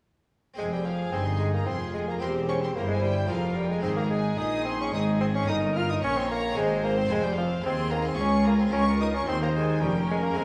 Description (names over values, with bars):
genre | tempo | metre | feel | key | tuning
classical, baroque-style concerto movement with solo episodes | 110 BPM | 3/4 | straight | F minor | A4 = 441 Hz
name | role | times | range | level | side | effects
harpsichord | accompaniment | 0.5-10.4 s | Db2 to C5 | -40 LUFS | equal | none
warm bassoon | melody | 0.6-10.4 s | F3 to F4 | -32 LUFS | equal | none
warm chamber violin section | melody | 0.6-10.4 s | F5 to F6 | -38 LUFS | equal | none
warm chamber violin section | second line | 0.6-10.4 s | Ab4 to Db5 | -36 LUFS | equal | none
warm chamber viola section | accompaniment | 0.6-10.4 s | Bb3 to G4 | -38 LUFS | equal | none
rich chamber cello section | bass | 0.6-10.4 s | Db2 to Bb2 | -31 LUFS | equal | none
rich chamber double bass section | bass | 0.6-10.4 s | E1 to Eb2 | -35 LUFS | equal | none
room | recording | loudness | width
wet recital hall reverb, RT60 1.7 s | studio reverb | -26 LUFS | mono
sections
0.6-10.4 A section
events
none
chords
0.6 Fm; 2.2 C7/E; 3.3 Fm; 3.8 Ab; 5.5 Eb7/G; 6.6 Ab; 7.1 Fm; 8.2 Db; 8.7 Bbm/Db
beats
| 0.59 1.14 1.68 | 2.22 2.76 3.30 | 3.85 4.39 4.93 | 5.47 6.01 6.55 | 7.09 7.64 8.18 | 8.72 9.27 9.81 | 10.36